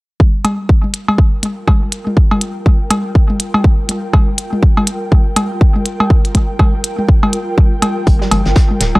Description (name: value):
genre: minimal techno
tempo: 122 BPM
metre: 4/4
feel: swing 60% on 16ths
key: G minor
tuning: A4 = 439 Hz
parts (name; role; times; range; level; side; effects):
- electronic kick drum; drums; 0.2-8.7 s; none; -10 LUFS; equal; none
- electronic toms and cowbell; percussion; 0.2-9.0 s; none; -18 LUFS; equal; analog delay
- ethereal airy pad; texture; 1.4-9.0 s; F4 to G5; -25 LUFS; equal; ensemble chorus, built-in reverb, tremolo, sidechain pumping
- electronic hi-hat; drums; 0.4-8.9 s; none; -18 LUFS; equal; overdrive
- hollow knocking FM bass; bass; 8.1-9.0 s; D1 to G1; -15 LUFS; equal; tube saturation, sidechain pumping
- vintage brush drum kit; drums; 8.1-8.9 s; hi-hat, snare drum; -25 LUFS; left 1 dB; high-pass filter on hats, high-pass filter on snare, high-pass filter on room
- resonant blip pluck; riff; 8.2-9.0 s; F3 to G3; -22 LUFS; right 1 dB; chorus, sidechain pumping, tape echo
room: digital ambience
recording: cassette tape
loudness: -11 LUFS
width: side -22 dB against mid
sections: 0.2-9.0 A section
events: fade-in on ambient pad 0.2-9.0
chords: 0.2 Gm7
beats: | 0.20 0.69 1.18 1.68 | 2.17 2.66 3.15 3.64 | 4.13 4.63 5.12 5.61 | 6.10 6.59 7.09 7.58 | 8.07 8.56